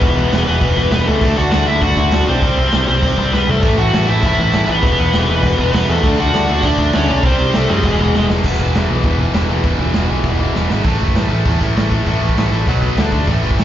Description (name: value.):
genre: punk rock.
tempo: 199 BPM.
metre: 4/4.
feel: straight.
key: unclear.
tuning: A4 = 440 Hz.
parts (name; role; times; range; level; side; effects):
high-gain lead guitar; melody; 0.0-8.3 s; G#3 to F#5; -18 LUFS; left 1 dB; distortion, tape echo.
distorted electric guitar; riff; 0.0-13.6 s; E2 to D4; -23 LUFS; right 12 dB; distortion, slapback echo.
raw garage guitar; riff; 0.0-13.6 s; E2 to D4; -22 LUFS; left 11 dB; overdrive, slapback echo.
picked electric bass; bass; 0.0-13.6 s; E1 to F#2; -18 LUFS; equal; none.
raw garage drum kit; drums; 0.0-13.6 s; crash cymbal, hi-hat, kick drum, snare drum, toms; -18 LUFS; equal; none.
distorted electric guitar; riff; 3.6-13.6 s; E2 to D4; -24 LUFS; right 1 dB; overdrive, slapback echo.
room: little or no reverb.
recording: live gig heard through the venue's PA, club ambience, nothing above 7.5 kHz.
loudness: -13 LUFS.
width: side -11 dB against mid.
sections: 0.0-8.4 A section; 8.4-10.9 B section; 10.9-13.6 C section.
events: drum fill 3.3-3.6, 8.1-8.4, 10.6-10.9.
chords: 0.0 E5; 1.2 D; 2.4 C5; 3.6 A5; 4.8 E5; 6.0 D; 7.2 C5; 7.8 E; 8.4 E5; 10.9 A5; 12.7 B5; 13.0 D5.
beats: | 0.01 0.32 0.62 0.92 | 1.22 1.52 1.82 2.13 | 2.43 2.73 3.03 3.33 | 3.63 3.93 4.24 4.54 | 4.84 5.14 5.44 5.74 | 6.04 6.34 6.64 6.94 | 7.24 7.54 7.84 8.14 | 8.44 8.74 9.04 9.35 | 9.65 9.95 10.25 10.55 | 10.86 11.16 11.46 11.77 | 12.07 12.37 12.67 12.98 | 13.28 13.59.